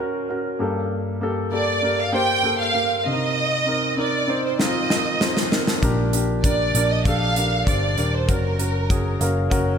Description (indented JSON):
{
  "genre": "piano-driven pop",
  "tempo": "98 BPM",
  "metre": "4/4",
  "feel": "straight",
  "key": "Bb major",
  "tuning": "A4 = 440 Hz",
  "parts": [
    { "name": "warm grand piano", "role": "accompaniment", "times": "0.0-9.8 s", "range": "G2 to Gb5", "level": "-24 LUFS", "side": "left 1 dB", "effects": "slapback echo" },
    { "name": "rich studio violin section", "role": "melody", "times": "1.5-9.2 s", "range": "Bb4 to G5", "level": "-22 LUFS", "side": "right 2 dB", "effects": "none" },
    { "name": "modern studio drum kit", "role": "drums", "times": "4.6-9.7 s", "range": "hi-hat, kick drum, snare drum", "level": "-23 LUFS", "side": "equal", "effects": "none" },
    { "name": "picked electric bass", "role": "bass", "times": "5.8-9.8 s", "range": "Eb1 to Bb1", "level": "-23 LUFS", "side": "equal", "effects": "none" }
  ],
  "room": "moderate scoring stage reverb, RT60 2.1 s",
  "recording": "big arena sound",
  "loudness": "-19 LUFS",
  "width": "side -7 dB against mid",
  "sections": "0.0-9.8 A section",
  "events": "drum fill 4.6-5.8; grand piano fill 8.9-9.8",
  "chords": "0.0 Gb; 0.6 Gmadd9; 3.1 Cm7; 5.8 Bb6; 8.3 Gb"
}